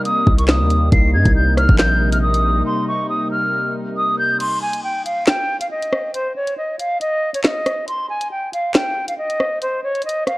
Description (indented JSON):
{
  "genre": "hip hop, drill",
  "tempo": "138 BPM",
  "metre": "4/4",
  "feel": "half-time",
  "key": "C phrygian",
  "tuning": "A4 = 440 Hz",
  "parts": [
    { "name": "breathy silver concert flute", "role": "melody", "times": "0.0-10.4 s", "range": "C5 to C7", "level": "-20 LUFS", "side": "equal", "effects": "low-pass filter, digital delay" },
    { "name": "sweeping resonant pad", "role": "sustained chords", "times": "0.0-4.4 s", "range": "C3 to Eb4", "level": "-23 LUFS", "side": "equal", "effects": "wide subtle chorus" },
    { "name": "drill drum kit", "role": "drums", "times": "0.1-10.4 s", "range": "crash cymbal, handclaps, hi-hat, kick drum, rim click, snare drum", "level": "-18 LUFS", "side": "equal", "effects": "overdrive" },
    { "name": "distorted 808-style bass", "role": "bass", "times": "0.3-2.6 s", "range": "Bb1 to G2", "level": "-16 LUFS", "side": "equal", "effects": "distortion" }
  ],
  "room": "light reverb, digital ambience",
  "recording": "worn, warbling old tape, cassette tape, warbly pitch drift",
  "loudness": "-16 LUFS",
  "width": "side -20 dB against mid",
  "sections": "0.0-4.4 A section; 4.4-10.4 B section",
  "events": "break 2.7-4.4, 4.4-10.4",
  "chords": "0.0 Cm7; 4.4 N.C."
}